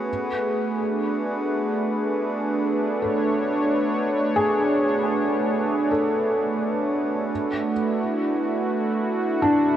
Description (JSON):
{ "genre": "ambient", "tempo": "67 BPM", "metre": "4/4", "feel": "straight", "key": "B dorian", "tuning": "A4 = 440 Hz", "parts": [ { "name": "warm analog pad", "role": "sustained chords", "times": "0.0-9.8 s", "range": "A3 to C#5", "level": "-22 LUFS", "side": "right 1 dB", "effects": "chorus" }, { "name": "felt-muted upright piano", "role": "arpeggios", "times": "0.0-9.8 s", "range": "D4 to A4", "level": "-26 LUFS", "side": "left 1 dB", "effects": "diffuse ambient delay" }, { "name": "hand-pumped harmonium", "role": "drone", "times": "0.0-9.8 s", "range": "B3 to F#4", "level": "-33 LUFS", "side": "left 1 dB", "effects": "none" } ], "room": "wet huge ambient reverb, RT60 8.2 s", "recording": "worn, warbling old tape, cassette tape, warbly pitch drift", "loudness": "-21 LUFS", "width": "side -10 dB against mid", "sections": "0.0-9.8 A section", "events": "fade-out on harmonium 0.0-9.8", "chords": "0.1 Bm9; 7.3 E9sus4" }